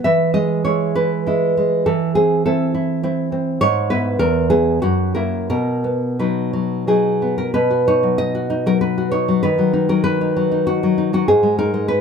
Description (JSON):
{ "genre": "romantic piece for solo classical guitar", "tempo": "85-105 BPM", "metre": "3/4", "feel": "rubato", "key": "B major from 3.6 s", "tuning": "A4 = 442 Hz", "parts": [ { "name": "nylon-string guitar", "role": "solo", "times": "0.0-12.0 s", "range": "E2 to E5", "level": "-15 LUFS", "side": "equal", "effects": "none" } ], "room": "light reverb", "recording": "close, detailed microphones", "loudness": "-16 LUFS", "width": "side -6 dB against mid", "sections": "0.0-7.6 A section; 7.6-12.0 B section", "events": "none", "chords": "0.0 E; 1.9 Am/E; 3.6 E/G#; 4.2 E; 4.8 F#7; 5.5 B; 9.4 B/D#; 11.3 G#5", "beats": "| 0.04 0.66 1.27 | 1.87 2.46 3.03 | 3.62 4.21 4.83 | 5.50 6.20 6.88 | 7.56 8.21 8.83 | 9.45 10.07 10.69 | 11.29 11.89" }